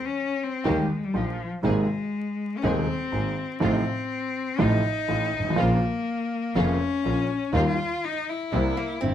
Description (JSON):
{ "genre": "tango", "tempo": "122 BPM", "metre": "4/4", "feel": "rubato", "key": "Ab major", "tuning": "A4 = 441 Hz", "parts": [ { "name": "clear cello", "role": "second line", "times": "0.0-9.1 s", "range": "F3 to F4", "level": "-28 LUFS", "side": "left 4 dB", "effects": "none" }, { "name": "warm concert grand piano", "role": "accompaniment", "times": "0.6-9.1 s", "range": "Eb1 to G4", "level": "-26 LUFS", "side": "right 1 dB", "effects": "none" }, { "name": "dark studio string section", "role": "stabs", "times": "0.6-9.1 s", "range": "G3 to Ab4", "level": "-32 LUFS", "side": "left 2 dB", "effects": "none" }, { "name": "warm double bass", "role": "bass", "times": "0.7-9.1 s", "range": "F1 to Eb2", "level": "-29 LUFS", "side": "equal", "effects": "none" }, { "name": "archtop guitar, miked and amplified", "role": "second line", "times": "8.8-9.1 s", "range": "Bb3 to C4", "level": "-29 LUFS", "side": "right 2 dB", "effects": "none" } ], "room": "light reverb", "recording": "close, detailed microphones, vinyl crackle", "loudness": "-23 LUFS", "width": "side -10 dB against mid", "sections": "0.0-9.1 A section", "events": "cello solo 0.0-9.1", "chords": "0.0 N.C.; 0.7 Eb; 1.6 Abadd9; 3.6 F7/A; 5.6 Bbm; 7.5 Ebadd9; 8.5 C7", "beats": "0.16 0.66 1.15 | 1.65 2.14 2.64 3.13 | 3.62 4.11 4.60 5.09 | 5.58 6.07 6.56 7.05 | 7.54 8.04 8.53 9.03" }